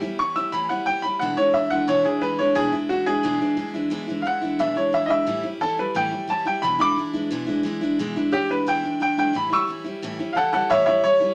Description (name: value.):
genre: rock.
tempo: 177 BPM.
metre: 4/4.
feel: straight.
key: E mixolydian.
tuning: A4 = 441 Hz.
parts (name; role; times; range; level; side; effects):
picked steel-string acoustic guitar; accompaniment; 0.0-11.3 s; E2 to E4; -28 LUFS; equal; none.
bright upright piano; melody; 0.2-11.3 s; F#4 to E6; -23 LUFS; equal; none.
room: moderate club reverb, RT60 0.7 s.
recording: none.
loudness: -23 LUFS.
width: mono.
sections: 0.0-3.9 A section; 3.9-11.3 B section.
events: upright piano solo 3.9-11.3.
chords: 0.0 A7; 1.2 E7; 5.3 A7; 6.6 E7; 9.3 A7.